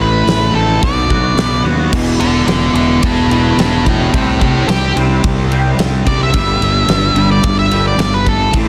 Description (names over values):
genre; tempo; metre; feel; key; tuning
quiet-loud alternative rock; 109 BPM; 4/4; straight; E minor; A4 = 440 Hz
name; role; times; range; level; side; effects
octave-fuzz lead guitar; melody; 0.0-8.5 s; E4 to E5; -19 LUFS; equal; distortion
twangy electric guitar; arpeggios; 0.0-8.7 s; E2 to F#4; -24 LUFS; equal; ensemble chorus, tape echo
fuzz guitar; riff; 0.0-8.7 s; E2 to C4; -19 LUFS; equal; distortion
fuzz fingered electric bass; bass; 0.0-8.7 s; E1 to D#2; -19 LUFS; equal; overdrive
big rock drum kit; drums; 0.3-8.7 s; crash cymbal, hi-hat, kick drum, ride cymbal, snare drum; -20 LUFS; equal; none
room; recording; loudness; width
small room ambience; dense, heavily limited modern master; -13 LUFS; mono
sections
0.0-1.9 A section; 1.9-8.7 B section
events
lead electric guitar solo 1.9-8.7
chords
0.0 Am; 0.8 Bm; 1.9 Em; 4.1 C5; 6.3 G5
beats
0.27 0.82 1.37 | 1.93 2.48 3.03 3.58 | 4.13 4.68 5.23 5.78 | 6.33 6.88 7.43 7.99 | 8.54